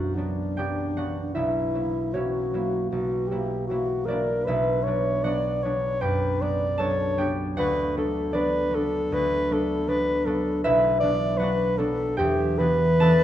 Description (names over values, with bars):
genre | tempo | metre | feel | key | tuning
classical, romantic duo for alto saxophone and harp | 77 BPM | 4/4 | rubato | B minor | A4 = 440 Hz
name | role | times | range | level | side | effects
dark alto saxophone | melody | 0.0-13.2 s | D4 to D5 | -25 LUFS | left 1 dB | none
concert harp | accompaniment | 0.0-13.2 s | B1 to A5 | -24 LUFS | right 1 dB | none
room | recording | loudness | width
wet recital hall reverb, RT60 1.8 s | dark, warm production | -22 LUFS | side -11 dB against mid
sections
0.0-13.2 A section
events
none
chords
0.0 Bm; 1.4 F#7/B; 4.5 Bm; 7.6 Bm/D; 10.6 Bm; 12.2 Em7